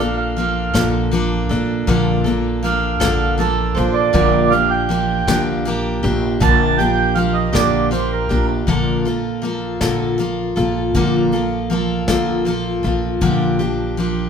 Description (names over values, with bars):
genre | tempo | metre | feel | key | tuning
acoustic folk duo or small band | 53 BPM (dotted quarters) | 6/8 | straight | Bb major | A4 = 440 Hz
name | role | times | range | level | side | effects
mellow accordion | second line | 0.0-8.5 s | A4 to A5 | -19 LUFS | right 6 dB | none
picked steel-string acoustic guitar | accompaniment | 0.0-14.3 s | Bb2 to A4 | -18 LUFS | left 1 dB | none
upright bass | bass | 0.0-14.3 s | Bb1 | -23 LUFS | equal | none
soft brush drum kit | drums | 0.4-14.2 s | hi-hat, kick drum, snare drum | -24 LUFS | left 1 dB | none
room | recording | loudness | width
wet large studio reverb, RT60 1.1 s | band playing live in one room | -15 LUFS | side -7 dB against mid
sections
0.0-8.7 A section; 8.7-14.3 B section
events
accordion solo 0.0-8.7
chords
0.0 Bbmaj7; 4.1 Gm7/Bb; 8.7 Bbmaj7; 13.2 Gm7/Bb